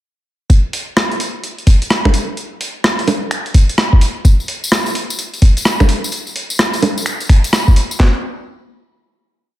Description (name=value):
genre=UK garage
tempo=128 BPM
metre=4/4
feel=swing 64% on 16ths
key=none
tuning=none
part: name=boom bap sampler-style drum kit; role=drums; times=0.5-8.1 s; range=handclaps, kick drum, snare drum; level=-9 LUFS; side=equal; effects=none
part: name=boom bap sampler-style drum kit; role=drums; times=0.5-7.9 s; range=bongos, finger snaps, hi-hat, rim click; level=-16 LUFS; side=right 1 dB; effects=none
part: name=tambourine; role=percussion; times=4.2-8.0 s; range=none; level=-24 LUFS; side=left 3 dB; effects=none
room=digital ambience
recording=none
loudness=-12 LUFS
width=side -14 dB against mid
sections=0.5-8.0 drop; 8.0-9.6 final hit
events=drop 0.5-8.0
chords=none